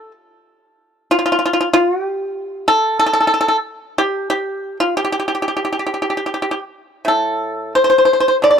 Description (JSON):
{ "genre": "chinese traditional, Chinese solo plucked strings", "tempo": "82-97 BPM", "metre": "4/4", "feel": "rubato", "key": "unclear", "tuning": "A4 = 441 Hz", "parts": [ { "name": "pipa", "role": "solo", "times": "0.0-8.6 s", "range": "A2 to D5", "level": "-14 LUFS", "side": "equal", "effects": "none" } ], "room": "small room ambience", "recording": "dry, close 1970s-style studio recording", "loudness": "-15 LUFS", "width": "side -7 dB against mid", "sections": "0.0-8.6 A section", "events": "none", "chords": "none" }